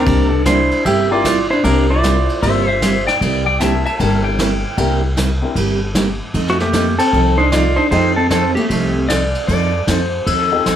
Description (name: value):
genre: country, western swing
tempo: 153 BPM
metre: 4/4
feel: swing 65% on 8ths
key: C mixolydian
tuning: A4 = 441 Hz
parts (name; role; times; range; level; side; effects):
- clean lap steel guitar; melody; 0.0-3.0, 6.5-9.1 s; Bb3 to E5; -17 LUFS; equal; plate reverb
- archtop guitar, miked and amplified; second line; 0.0-3.0, 6.5-9.1 s; A3 to G4; -21 LUFS; right 1 dB; none
- upright bass; bass; 0.0-10.8 s; G1 to F2; -19 LUFS; equal; none
- picked steel-string acoustic guitar; accompaniment; 0.1-10.8 s; C3 to A4; -20 LUFS; right 4 dB; none
- vintage brush drum kit; drums; 0.1-10.8 s; crash cymbal, hi-hat, kick drum, ride cymbal, snare drum; -22 LUFS; equal; none
- warm upright piano; accompaniment; 1.1-5.5, 7.9-10.6 s; C4 to E5; -24 LUFS; left 5 dB; none
- pedal steel guitar; second line; 2.4-5.0, 9.1-10.8 s; A4 to A5; -19 LUFS; left 3 dB; none
room: light reverb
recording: none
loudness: -13 LUFS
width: side -10 dB against mid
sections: 0.1-10.8 A section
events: none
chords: 0.1 C9; 6.3 F9